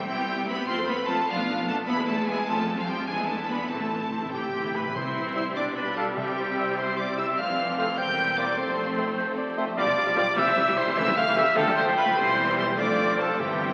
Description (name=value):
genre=quick classical-period movement for symphony orchestra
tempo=99 BPM (dotted quarters)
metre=6/8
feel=straight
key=A minor, C major from 5.0 s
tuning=A4 = 440 Hz
part: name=rich chamber violin section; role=melody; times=0.0-13.7 s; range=F5 to G6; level=-34 LUFS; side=equal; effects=none
part: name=clear chamber violin section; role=second line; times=0.0-13.7 s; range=G3 to C5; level=-40 LUFS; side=equal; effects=none
part: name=rich chamber viola section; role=accompaniment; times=0.0-13.7 s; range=D3 to A4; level=-32 LUFS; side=equal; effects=none
part: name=rich symphonic cello section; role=bass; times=0.0-13.7 s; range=E2 to C4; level=-38 LUFS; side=equal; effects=none
part: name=rich studio double bass section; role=bass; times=0.1-13.7 s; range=E1 to F2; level=-40 LUFS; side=equal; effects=none
part: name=timpani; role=percussion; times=3.7-6.7, 13.4-13.7 s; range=G2 to C3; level=-43 LUFS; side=equal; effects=none
part: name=small flute group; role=second line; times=4.3-13.7 s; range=G4 to G5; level=-33 LUFS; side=equal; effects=none
part: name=warm trumpet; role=stabs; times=4.3-13.7 s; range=G4 to G5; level=-30 LUFS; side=equal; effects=none
part: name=warm oboe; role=second line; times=5.4-13.7 s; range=C5 to G5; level=-38 LUFS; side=equal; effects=none
part: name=mellow bassoon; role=accompaniment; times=5.4-13.7 s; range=E3 to Bb3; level=-40 LUFS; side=equal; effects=none
part: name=warm French horn section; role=sustained chords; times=5.4-13.7 s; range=E3 to G4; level=-39 LUFS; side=equal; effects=none
part: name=mellow clarinet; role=second line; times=5.6-13.7 s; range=A4 to G5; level=-33 LUFS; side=equal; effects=none
room=wet concert hall reverb, RT60 2.0 s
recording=very old 78 rpm record, vinyl crackle, nothing above 10.6 kHz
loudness=-25 LUFS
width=mono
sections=0.0-5.0 A section; 5.0-13.7 B section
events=timpani fill 3.7-5.0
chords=0.1 Cmaj7; 0.7 F; 1.3 Bm7b5; 1.9 E; 2.5 F; 3.1 E7; 3.7 Am; 5.0 C; 5.6 G7/B; 6.2 C; 7.4 Fmaj7; 8.0 C7/E; 8.6 F; 9.8 G7/B; 10.4 C; 11.0 A7/C#; 11.6 Dm; 12.2 C/E; 12.8 Dm7/F